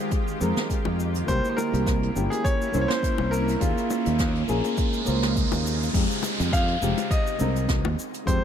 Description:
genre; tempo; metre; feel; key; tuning
sunset chillout; 103 BPM; 4/4; swing 55% on 16ths; F minor; A4 = 439 Hz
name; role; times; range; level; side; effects
nylon-string guitar; accompaniment; 0.0-8.4 s; Ab3 to C5; -28 LUFS; moving between left 4 dB and right 4 dB; auto-pan, digital delay
shimmering ambient pad; sustained chords; 0.0-5.9 s; Db3 to G4; -33 LUFS; equal; chorus, built-in reverb
electronic kick drum; drums; 0.1-8.4 s; none; -26 LUFS; equal; overdrive
jazz brush drum kit; drums; 0.1-8.4 s; hi-hat, shaker, snare drum; -34 LUFS; right 2 dB; none
fretless electric bass; bass; 0.4-8.4 s; F1 to F2; -26 LUFS; equal; lush chorus
bongos; percussion; 0.9-8.0 s; none; -34 LUFS; left 8 dB; none
bright grand piano; melody; 1.3-8.4 s; F4 to F5; -30 LUFS; left 1 dB; digital delay
riser and downlifter; sound effects; 3.1-8.4 s; none; -33 LUFS; right 2 dB; none
room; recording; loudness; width
light reverb, small room ambience; dark, warm production; -22 LUFS; side -9 dB against mid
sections
0.0-5.9 A section; 5.9-8.4 B section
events
riser 3.1-5.9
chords
0.0 Fm9; 1.3 C7b9; 3.6 Eb9sus4; 5.9 Fm9

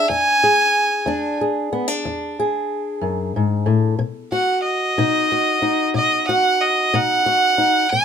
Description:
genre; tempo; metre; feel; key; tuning
acoustic country blues, solo or duo; 61 BPM (dotted quarters); 12/8; straight; unclear; A4 = 440 Hz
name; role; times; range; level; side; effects
clear fiddle; melody; 0.0-8.0 s; D#5 to A5; -16 LUFS; right 1 dB; none
fingerpicked old ladder-braced acoustic guitar; accompaniment; 0.0-8.0 s; E2 to G#4; -20 LUFS; left 2 dB; none
room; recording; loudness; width
light reverb; close, detailed microphones; -16 LUFS; side -7 dB against mid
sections
0.0-8.0 A section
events
none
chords
0.0 E7; 4.0 B

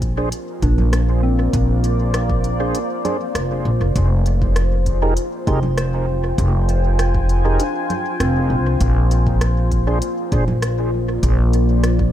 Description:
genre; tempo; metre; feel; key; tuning
ambient dub; 99 BPM; 4/4; straight; unclear; A4 = 440 Hz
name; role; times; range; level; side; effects
deep dark ambient pad; sustained chords; 0.0-12.1 s; Bb3 to Ab5; -24 LUFS; equal; chorus, built-in reverb
upright bass; bass; 0.0-12.1 s; F1 to C2; -17 LUFS; equal; none
electronic kick drum; drums; 0.0-12.1 s; none; -22 LUFS; equal; overdrive, small room reverb
organic electronic drum kit; drums; 0.0-12.0 s; congas, hi-hat, rim click; -28 LUFS; right 1 dB; overdrive, small room reverb, dub echo
mellow tonewheel organ; stabs; 0.2-10.4 s; D4 to C5; -28 LUFS; right 3 dB; overdrive, chorus vibrato, slow rotary speaker, vintage 12-bit sampler grit, dub echo
soft synth bell; arpeggios; 0.6-9.8 s; C4 to C6; -28 LUFS; left 3 dB; chorus, dub echo
room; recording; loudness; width
digital ambience; echo-heavy mix; -16 LUFS; side -12 dB against mid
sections
0.0-12.1 A section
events
none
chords
0.0 Bb9; 4.0 Fm11; 8.8 Bb9

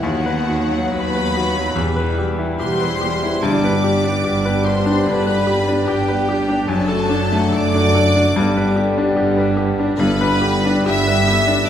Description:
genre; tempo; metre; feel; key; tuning
classical; 72 BPM; 4/4; uneven beats, rubato; unclear; A4 = 439 Hz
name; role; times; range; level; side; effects
clear concert grand piano; melody; 0.0-11.7 s; D#2 to B4; -19 LUFS; left 2 dB; none
warm studio violin section; melody; 0.0-11.7 s; F#5 to E6; -25 LUFS; left 1 dB; none
clear studio violin section; second line; 0.0-11.7 s; F#4 to E5; -24 LUFS; left 1 dB; none
rich studio viola section; accompaniment; 0.0-11.7 s; D3 to G4; -26 LUFS; right 2 dB; none
mellow French horn section; sustained chords; 0.0-11.6 s; F#3 to D4; -23 LUFS; left 3 dB; none
dark studio cello section; bass; 0.0-11.6 s; D#2 to G2; -24 LUFS; right 2 dB; none
dark studio double bass section; bass; 0.0-11.6 s; E1 to D#2; -27 LUFS; right 4 dB; none
timpani; percussion; 3.4-4.6, 10.0-11.2 s; G2; -29 LUFS; equal; none
room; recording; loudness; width
wet recital hall reverb, RT60 1.3 s; recorded in a church or concert hall; -15 LUFS; side -9 dB against mid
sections
0.0-11.7 A section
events
none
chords
0.0 B/D#; 1.8 Em; 3.5 G; 6.7 D/F#; 8.4 G

